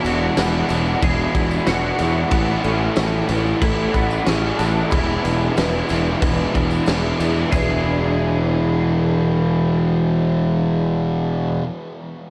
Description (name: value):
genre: rock, shoegaze and dream pop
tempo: 92 BPM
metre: 4/4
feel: straight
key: E mixolydian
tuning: A4 = 440 Hz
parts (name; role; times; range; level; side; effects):
- twangy electric guitar; melody; 0.0-11.6 s; B3 to G#4; -30 LUFS; equal; analog chorus, delay
- picked twelve-string acoustic guitar; arpeggios; 0.0-11.6 s; E3 to G#4; -32 LUFS; equal; none
- overdriven electric guitar; riff; 0.0-11.6 s; E2 to E4; -27 LUFS; equal; reverse reverb
- raw garage guitar; riff; 0.0-11.6 s; E2 to A3; -30 LUFS; equal; none
- thick fuzz guitar; riff; 0.0-11.6 s; E2 to A3; -28 LUFS; equal; none
- fuzz fingered electric bass; bass; 0.0-11.6 s; E1 to E2; -24 LUFS; equal; overdrive
- tambourine; percussion; 0.0-7.8 s; none; -47 LUFS; equal; none
- loose indie drum kit; drums; 0.1-7.7 s; crash cymbal, kick drum, snare drum, toms; -25 LUFS; equal; none
room: wet huge ambient reverb, RT60 7.2 s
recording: dreamy mix soaked in reverb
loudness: -19 LUFS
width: mono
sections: 0.0-7.5 A section; 7.5-10.1 B section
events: none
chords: 0.0 E9; 2.3 Amaj7; 4.9 E7